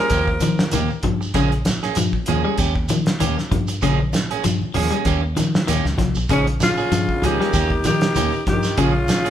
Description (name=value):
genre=afrobeat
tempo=97 BPM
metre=4/4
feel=swing 55% on 16ths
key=Bb dorian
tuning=A4 = 444 Hz
part: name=raspy alto saxophone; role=melody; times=0.0-1.0, 6.3-9.3 s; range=Db4 to Bb4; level=-22 LUFS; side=left 2 dB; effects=none
part: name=clear trombone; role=second line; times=0.0-1.0, 6.3-9.3 s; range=Ab2 to F3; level=-29 LUFS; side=right 4 dB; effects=none
part: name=electric guitar at the edge of break-up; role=arpeggios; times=0.0-9.0 s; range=Db3 to G3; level=-24 LUFS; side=left 5 dB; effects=none
part: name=electric guitar at the edge of break-up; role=stabs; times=0.0-9.3 s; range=F3 to Ab4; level=-25 LUFS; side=right 7 dB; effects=none
part: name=fingered electric bass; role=bass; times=0.1-9.1 s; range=Bb1 to Eb3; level=-23 LUFS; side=equal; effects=none
part: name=cloth-damped thuddy drum kit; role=drums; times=0.1-9.3 s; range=hi-hat, kick drum, snare drum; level=-24 LUFS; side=equal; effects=none
part: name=congas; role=percussion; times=0.1-9.3 s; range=none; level=-28 LUFS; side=equal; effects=none
part: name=shekere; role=percussion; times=0.1-9.3 s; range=none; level=-29 LUFS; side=right 4 dB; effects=none
room=moderate large studio reverb, RT60 1.1 s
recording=band playing live in one room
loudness=-17 LUFS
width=side -10 dB against mid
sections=0.0-9.3 A section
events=none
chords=0.1 Eb7; 1.4 Bbm7; 2.6 Eb7; 3.8 Bbm7; 5.1 Eb7; 6.3 Bbm7; 7.5 Eb7; 8.8 Bbm7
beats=0.11 0.73 | 1.35 1.97 2.59 3.21 | 3.83 4.44 5.06 5.68 | 6.30 6.92 7.54 8.16 | 8.78